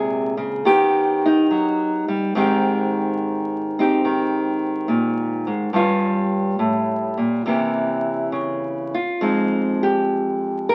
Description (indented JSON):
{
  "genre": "solo jazz",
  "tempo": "70 BPM",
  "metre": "4/4",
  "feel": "swing 68% on 8ths, rubato",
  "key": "unclear",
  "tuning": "A4 = 441 Hz",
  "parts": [
    { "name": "nylon-string guitar", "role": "solo", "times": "0.0-10.7 s", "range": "F2 to Bb4", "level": "-21 LUFS", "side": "equal", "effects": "none" }
  ],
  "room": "moderate studio reverb, RT60 0.8 s",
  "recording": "very old 78 rpm record, vinyl crackle",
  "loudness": "-21 LUFS",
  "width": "mono",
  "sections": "0.0-10.7 A section",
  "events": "none",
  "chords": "0.0 Bbm9; 0.6 Eb7alt; 2.3 Abmaj7; 5.7 Gm7b5; 7.4 C7b9; 9.2 Fm7"
}